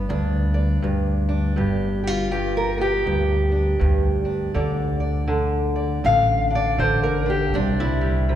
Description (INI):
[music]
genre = acoustic country blues, solo or duo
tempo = 81 BPM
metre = 4/4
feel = swing 61% on 8ths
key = G mixolydian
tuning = A4 = 440 Hz
[part]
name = fingerpicked steel-string acoustic guitar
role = melody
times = 0.0-8.4 s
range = G2 to F5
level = -21 LUFS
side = equal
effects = none
[part]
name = upright bass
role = bass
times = 0.0-8.4 s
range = G1 to D2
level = -22 LUFS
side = equal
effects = none
[sound]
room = wet church reverb, RT60 2.6 s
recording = recorded in a church or concert hall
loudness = -19 LUFS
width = side -11 dB against mid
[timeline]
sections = 0.0-8.4 A section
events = none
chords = 0.0 G; 4.6 D5; 7.5 C